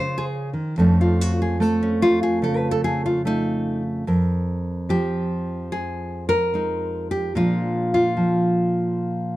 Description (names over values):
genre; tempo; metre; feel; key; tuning
solo jazz; 73 BPM; 4/4; swing 69% on 8ths; F minor from 4.1 s; A4 = 440 Hz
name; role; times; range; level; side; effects
nylon-string guitar; solo; 0.0-9.4 s; F2 to C5; -19 LUFS; equal; none
room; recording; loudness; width
small room ambience; dry, close 1970s-style studio recording; -19 LUFS; side -16 dB against mid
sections
0.0-4.1 A section; 4.1-9.4 B section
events
nylon-string guitar solo 0.0-4.1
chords
0.0 Eb5; 0.8 Faug7; 4.1 Fm11; 7.3 Bb7